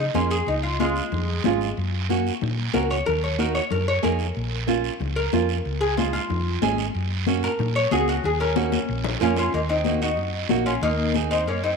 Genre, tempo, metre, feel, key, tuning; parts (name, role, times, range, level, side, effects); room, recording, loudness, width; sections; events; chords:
latin, cumbia; 186 BPM; 4/4; straight; A4 = 439 Hz
oud; melody; 0.0-11.8 s; Ab3 to Db5; -25 LUFS; left 2 dB
hollow-body short-scale fingered electric bass; bass; 0.0-11.7 s; Ab1 to Bb2; -27 LUFS; equal
nylon-string guitar; accompaniment; 0.1-11.4 s; Ab3 to Ab4; -27 LUFS; right 12 dB
congas; percussion; 0.1-11.6 s; -29 LUFS; left 14 dB
guiro; percussion; 0.1-11.8 s; -33 LUFS; right 12 dB
moderate echo chamber reverb, RT60 1.5 s, small room ambience; 1960s-style stereo with parts hard left and right; -21 LUFS; side -4 dB against mid
0.0-9.5 A section; 9.5-11.8 B section
oud solo 0.0-9.5; drum fill 8.6-9.5
0.5 Db; 1.8 Gb; 3.1 Ebmadd9; 4.4 Bbm; 5.7 Db; 6.9 Gb; 8.2 Ebm; 8.9 Bbm; 9.5 Ebm